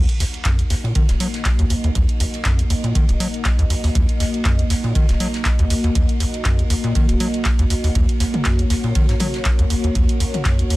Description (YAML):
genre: acid house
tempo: 120 BPM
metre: 4/4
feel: swing 55% on 16ths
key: Eb minor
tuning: A4 = 438 Hz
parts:
  - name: dark analog pad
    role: sustained chords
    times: 0.7-10.8 s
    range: Bb3 to Eb5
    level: -25 LUFS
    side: equal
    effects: chorus, sidechain pumping
  - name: overdriven acid bass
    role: riff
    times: 0.0-10.7 s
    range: Eb1 to Gb3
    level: -20 LUFS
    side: equal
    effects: sidechain pumping
  - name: warm studio string section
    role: texture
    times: 0.0-10.8 s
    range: Eb4 to Gb5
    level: -39 LUFS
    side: left 4 dB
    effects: sidechain pumping
  - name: punchy analog drum machine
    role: drums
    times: 0.1-10.8 s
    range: handclaps, hi-hat, toms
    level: -26 LUFS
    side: right 1 dB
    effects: none
  - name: loose indie drum kit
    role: drums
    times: 0.2-10.8 s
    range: ride cymbal, snare drum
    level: -35 LUFS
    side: right 3 dB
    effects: high-pass filter on cymbals, high-pass filter on snare, high-pass filter on room
  - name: electronic kick drum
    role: drums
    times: 0.5-10.6 s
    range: none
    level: -19 LUFS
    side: equal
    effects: none
room: little or no reverb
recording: none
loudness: -16 LUFS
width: side -19 dB against mid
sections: 0.0-10.8 A section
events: fade-in on string section 0.0-10.8; filter sweep on acid bass 0.0-10.8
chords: 0.0 Ebm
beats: 0.45 0.95 1.45 | 1.95 2.45 2.95 3.45 | 3.95 4.45 4.95 5.45 | 5.95 6.45 6.95 7.45 | 7.95 8.45 8.95 9.45 | 9.95 10.45